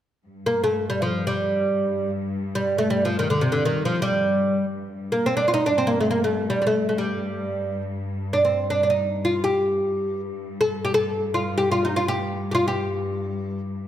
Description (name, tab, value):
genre	turkish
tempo	free time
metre	none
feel	none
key	G makam ussak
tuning	A4 = 440 Hz
part	rich studio cello section	drone	0.3-13.9 s	G2	-30 LUFS	left 1 dB	none
part	oud	melody	0.5-13.6 s	C3 to A4-30c	-21 LUFS	equal	none
room	moderate recital hall reverb, RT60 1.5 s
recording	none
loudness	-21 LUFS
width	side -11 dB against mid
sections	0.2-13.9 A section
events	none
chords	none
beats	free time